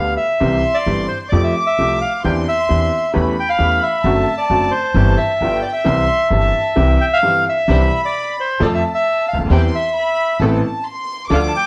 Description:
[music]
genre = tango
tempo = 133 BPM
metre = 4/4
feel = rubato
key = C major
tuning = A4 = 440 Hz
[part]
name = bandoneon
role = melody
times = 0.0-11.7 s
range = C5 to A5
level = -20 LUFS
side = equal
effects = slapback echo
[part]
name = warm studio violin section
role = second line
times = 0.0-11.7 s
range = G5 to D6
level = -27 LUFS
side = equal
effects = none
[part]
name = bright upright piano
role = accompaniment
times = 0.0-11.5 s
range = G1 to A4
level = -23 LUFS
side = equal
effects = none
[part]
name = upright bass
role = bass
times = 0.0-11.5 s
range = F#1 to F2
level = -20 LUFS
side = equal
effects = none
[part]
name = bright symphonic string section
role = stabs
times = 7.7-11.5 s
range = B3 to C5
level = -26 LUFS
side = equal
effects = none
[sound]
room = moderate studio ambience, RT60 0.5 s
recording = worn, warbling old tape, cassette tape, warbly pitch drift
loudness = -17 LUFS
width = mono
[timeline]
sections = 0.0-7.7 A section; 7.7-11.7 A section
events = none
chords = 0.4 C; 1.3 Fadd9; 2.2 Cadd9/E; 3.1 A7/E; 4.0 D7/F#; 4.9 C/G; 5.4 G7; 5.9 C; 7.7 Cadd9; 8.6 F; 9.5 C/E; 10.4 Amadd9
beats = | 0.41 0.87 1.33 1.79 | 2.25 2.70 3.15 3.60 | 4.05 4.50 4.95 5.40 | 5.86 6.31 6.76 7.23 | 7.69 8.15 8.61 9.06 | 9.51 9.96 10.40 10.85 | 11.30

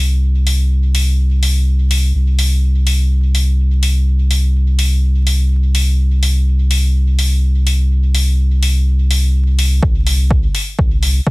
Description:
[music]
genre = dub techno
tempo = 125 BPM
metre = 4/4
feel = straight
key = unclear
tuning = A4 = 440 Hz
[part]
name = pure sine sub bass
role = bass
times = 0.0-11.3 s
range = C2 to F2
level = -12 LUFS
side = equal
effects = sidechain pumping
[part]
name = electronic hi-hat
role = drums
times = 0.5-11.1 s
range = none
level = -21 LUFS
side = left 2 dB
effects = none
[part]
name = electronic kick drum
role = drums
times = 9.8-11.3 s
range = none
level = -15 LUFS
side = equal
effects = none
[sound]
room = little or no reverb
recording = vinyl crackle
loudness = -12 LUFS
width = side -22 dB against mid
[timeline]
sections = 0.0-9.8 A section; 9.8-11.3 B section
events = none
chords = none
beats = | 0.23 0.71 1.19 1.67 | 2.15 2.63 3.11 3.59 | 4.07 4.55 5.03 5.51 | 5.99 6.47 6.95 7.43 | 7.91 8.39 8.87 9.35 | 9.83 10.31 10.79 11.27

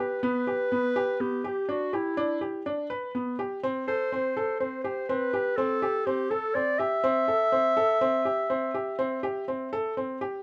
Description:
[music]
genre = contemporary instrumental, chamber music in an uneven meter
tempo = 123 BPM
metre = 7/4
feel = straight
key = unclear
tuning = A4 = 440 Hz
[part]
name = warm clarinet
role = melody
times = 0.0-10.0 s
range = E4 to E5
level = -30 LUFS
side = equal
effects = none
[part]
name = felt-muted upright piano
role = arpeggios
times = 0.0-10.4 s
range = B3 to B4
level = -32 LUFS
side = equal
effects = none
[sound]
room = light reverb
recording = dark, warm production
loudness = -28 LUFS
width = mono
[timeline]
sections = 0.0-10.4 A section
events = none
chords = 0.0 Em7 (rootless); 3.6 C6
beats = | 0.23 0.72 1.20 1.69 2.18 2.66 3.15 | 3.63 4.12 4.61 5.09 5.58 6.07 6.56 | 7.04 7.53 8.02 8.51 8.99 9.48 9.97

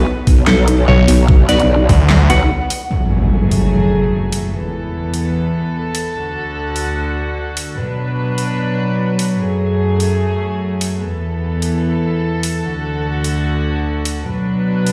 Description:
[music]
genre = heavy wobble dubstep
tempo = 148 BPM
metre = 4/4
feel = swing 53% on 16ths, half-time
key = F# minor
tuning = A4 = 442 Hz
[part]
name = clean electric guitar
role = melody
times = 0.0-2.8 s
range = A4 to F#5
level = -22 LUFS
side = equal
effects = dub echo
[part]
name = growl bass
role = bass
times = 0.0-2.5 s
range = B1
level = -15 LUFS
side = equal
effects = chorus, overdrive
[part]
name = big-room dance drum kit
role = drums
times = 0.3-14.9 s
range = handclaps, hi-hat, snare drum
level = -24 LUFS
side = equal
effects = overdrive
[part]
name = electronic kick drum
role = drums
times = 0.3-2.0 s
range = none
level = -12 LUFS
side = equal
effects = none
[part]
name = snarling distorted saw bass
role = bass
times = 0.9-2.3 s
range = B1 to D2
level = -13 LUFS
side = equal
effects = distortion, overdrive
[part]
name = supersaw stab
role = stabs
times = 1.5-2.4 s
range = B3 to B4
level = -28 LUFS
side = equal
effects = cassette tape, dub echo
[part]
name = rich chamber string section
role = sustained chords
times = 2.9-14.9 s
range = D2 to B4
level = -19 LUFS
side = equal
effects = vintage 12-bit sampler grit, sidechain pumping
[part]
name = impact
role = sound effects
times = 2.9-4.5 s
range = none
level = -20 LUFS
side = equal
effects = none
[sound]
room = moderate lush hall reverb, RT60 2.2 s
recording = played on a big sound system in a bare room, large studio reverb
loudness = -16 LUFS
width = mono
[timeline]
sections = 0.0-2.9 A section; 2.9-14.9 B section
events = drop 0.0-2.9; break 2.5-2.9; impact 2.9-4.5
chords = 0.0 Bm; 2.9 F#madd9; 4.5 Esus4; 6.1 D; 7.8 Bm; 9.4 F#madd9; 11.0 Esus4; 12.6 D; 14.3 Bm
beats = 0.07 0.47 0.88 | 1.28 1.69 2.10 2.50 | 2.91 3.31 3.72 4.12 | 4.53 4.93 5.34 5.74 | 6.15 6.55 6.96 7.37 | 7.77 8.18 8.58 8.99 | 9.39 9.80 10.20 10.61 | 11.01 11.42 11.82 12.23 | 12.64 13.04 13.45 13.85 | 14.26 14.66

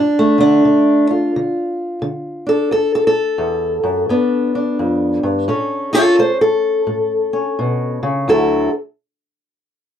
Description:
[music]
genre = acoustic country blues, solo or duo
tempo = 86 BPM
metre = 4/4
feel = swing 64% on 8ths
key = unclear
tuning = A4 = 439 Hz
[part]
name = fingerpicked steel-string acoustic guitar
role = solo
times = 0.0-8.7 s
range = D2 to C5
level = -14 LUFS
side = equal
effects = none
[sound]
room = light reverb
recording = dry, close 1970s-style studio recording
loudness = -14 LUFS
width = side -9 dB against mid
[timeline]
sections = 0.0-8.3 A section; 8.3-10.0 B section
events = none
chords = 0.0 G5; 2.7 D; 4.1 G7; 5.5 A; 8.3 Dadd9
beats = 0.63 1.32 2.02 | 2.71 3.40 4.10 4.79 | 5.48 6.18 6.87 7.57 | 8.27

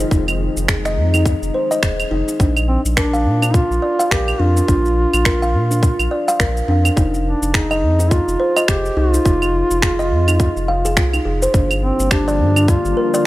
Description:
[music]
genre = organic downtempo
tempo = 105 BPM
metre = 4/4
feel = swing 59% on 16ths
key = unclear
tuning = A4 = 441 Hz
[part]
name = warbly tape-like pad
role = sustained chords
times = 0.0-2.4, 11.9-13.3 s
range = D3 to F4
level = -26 LUFS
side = left 2 dB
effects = chorus, built-in reverb, sidechain pumping
[part]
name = kalimba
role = arpeggios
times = 0.0-13.2 s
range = D4 to F5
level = -20 LUFS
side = equal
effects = tape echo
[part]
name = warm sub bass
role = bass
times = 0.0-12.9 s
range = Eb1 to Bb2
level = -19 LUFS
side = equal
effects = tube saturation, sidechain pumping
[part]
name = electronic shaker, claves and finger snaps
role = drums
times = 0.0-13.2 s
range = none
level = -21 LUFS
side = right 2 dB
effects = none
[part]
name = electronic kick drum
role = drums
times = 0.1-12.8 s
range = none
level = -17 LUFS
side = equal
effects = overdrive
[part]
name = mellow duduk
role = melody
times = 2.7-13.3 s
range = C4 to G4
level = -20 LUFS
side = equal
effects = tape echo
[sound]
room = digital ambience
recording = none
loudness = -14 LUFS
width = side -17 dB against mid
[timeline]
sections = 0.0-2.4 A section; 2.4-13.3 B section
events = none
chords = 0.0 Fm7; 2.4 Bb; 7.0 Fm7; 11.5 Gm7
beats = | 0.11 0.69 1.26 1.83 | 2.40 2.97 3.54 4.11 | 4.68 5.26 5.83 6.40 | 6.97 7.54 8.11 8.69 | 9.26 9.83 10.40 10.97 | 11.54 12.11 12.69 13.26

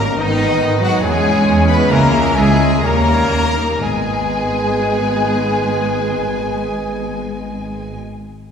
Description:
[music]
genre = classical, dramatic, fast romantic movement for symphony orchestra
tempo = 115-143 BPM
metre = 4/4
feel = rubato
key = G# minor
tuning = A4 = 441 Hz
[part]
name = warm symphonic violin section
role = melody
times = 0.0-8.0 s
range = D#5 to B5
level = -26 LUFS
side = left 3 dB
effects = none
[part]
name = large flute ensemble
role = second line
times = 0.0-8.0 s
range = D#5 to B5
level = -24 LUFS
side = left 4 dB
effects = none
[part]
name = warm clarinet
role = second line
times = 0.0-8.0 s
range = B4 to E5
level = -25 LUFS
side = right 1 dB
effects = none
[part]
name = warm symphonic violin section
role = second line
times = 0.0-8.0 s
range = D#4 to B4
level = -27 LUFS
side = left 1 dB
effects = none
[part]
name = dark bassoon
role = accompaniment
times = 0.0-8.0 s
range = G3 to C#4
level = -27 LUFS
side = right 2 dB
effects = none
[part]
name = warm symphonic viola section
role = accompaniment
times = 0.0-8.0 s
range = D#3 to E4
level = -27 LUFS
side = right 1 dB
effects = none
[part]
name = bright trombone section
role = sustained chords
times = 0.0-8.0 s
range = D#3 to C#4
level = -27 LUFS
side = right 1 dB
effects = none
[part]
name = warm French horn section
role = sustained chords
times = 0.0-8.0 s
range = D#3 to B3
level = -24 LUFS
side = left 3 dB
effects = none
[part]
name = warm trumpet section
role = stabs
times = 0.0-8.0 s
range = D#4 to B4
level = -24 LUFS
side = left 1 dB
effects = none
[part]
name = dark symphonic cello section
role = bass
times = 0.0-8.0 s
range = D#3 to B3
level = -22 LUFS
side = right 2 dB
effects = none
[part]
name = dark symphonic double bass section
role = bass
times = 0.0-8.0 s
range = G#1 to E2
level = -20 LUFS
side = right 1 dB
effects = none
[sound]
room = wet scoring stage reverb, RT60 2.0 s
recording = heard from further back in the room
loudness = -13 LUFS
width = side -7 dB against mid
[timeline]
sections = 0.0-3.8 A section; 3.8-7.6 B section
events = slowing down 0.0-3.8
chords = 0.2 G#m; 1.0 C#m/E; 1.9 C#m; 2.8 D#7; 3.8 G#m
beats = | 0.18 0.60 1.03 1.46 | 1.90 2.36 2.82 3.31 | 3.81 4.29 4.77 5.24 | 5.71 6.18 6.65 7.12

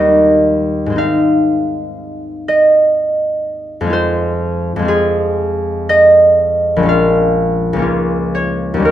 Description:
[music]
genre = classical, solo harp piece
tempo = 57-64 BPM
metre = 3/4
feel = rubato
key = Ab major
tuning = A4 = 435 Hz
[part]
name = concert harp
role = solo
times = 0.0-8.9 s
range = Bb1 to F5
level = -11 LUFS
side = equal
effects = none
[sound]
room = light reverb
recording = minimal, uncompressed stereo recording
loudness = -11 LUFS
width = side -12 dB against mid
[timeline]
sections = 0.0-8.9 A section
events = none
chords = 0.0 Eb; 1.0 Ab; 3.9 Fm; 6.9 Bbm7; 7.9 Bbm/Db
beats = | 0.98 1.99 2.98 | 3.93 4.88 5.90 | 6.88 7.85 8.85

